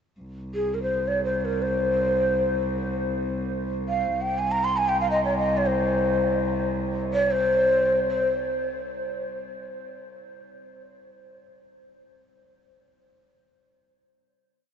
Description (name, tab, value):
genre	Arabic maqam ensemble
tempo	free time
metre	none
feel	none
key	C maqam bayati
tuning	A4 = 438 Hz
part	rich cello	drone	0.2-8.1 s	C2	-30 LUFS	equal	stereo widening
part	breathy mellow ney	melody	0.5-8.3 s	Ab4 to C6	-24 LUFS	equal	none
room	wet huge ambient reverb, RT60 7.0 s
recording	in a vast, echoing space, nothing above 8.0 kHz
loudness	-22 LUFS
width	side -8 dB against mid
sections	0.2-8.1 free-time section; 8.1-10.1 final note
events	none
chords	none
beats	free time